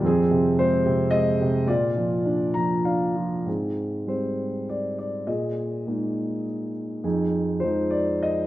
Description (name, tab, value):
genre	classical, lyrical solo piano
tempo	97-112 BPM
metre	3/4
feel	rubato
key	Ab lydian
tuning	A4 = 440 Hz
part	dark concert grand piano	solo	0.0-8.5 s	F2 to Bb5	-22 LUFS	equal	none
room	moderate recital hall reverb, RT60 1.7 s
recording	none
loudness	-22 LUFS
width	side -15 dB against mid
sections	0.0-3.5 A section; 3.5-8.5 B section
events	grand piano fill 2.3-3.5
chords	0.0 Fm; 1.7 Bb; 3.5 Abmaj7; 5.3 Bb7sus4; 7.0 Fm7